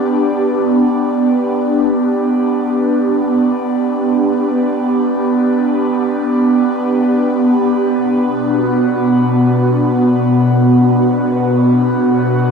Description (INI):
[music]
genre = ambient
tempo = free time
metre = none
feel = none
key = G major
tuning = A4 = 440 Hz
[part]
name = airy breathy pad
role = solo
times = 0.0-12.5 s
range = B2 to G4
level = -12 LUFS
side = equal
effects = chorus, phaser, ping-pong delay
[sound]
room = wet cathedral reverb, RT60 5.7 s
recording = in a vast, echoing space, cassette tape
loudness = -12 LUFS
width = side -6 dB against mid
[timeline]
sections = 0.0-12.5 A section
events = none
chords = 0.0 G; 8.0 Bm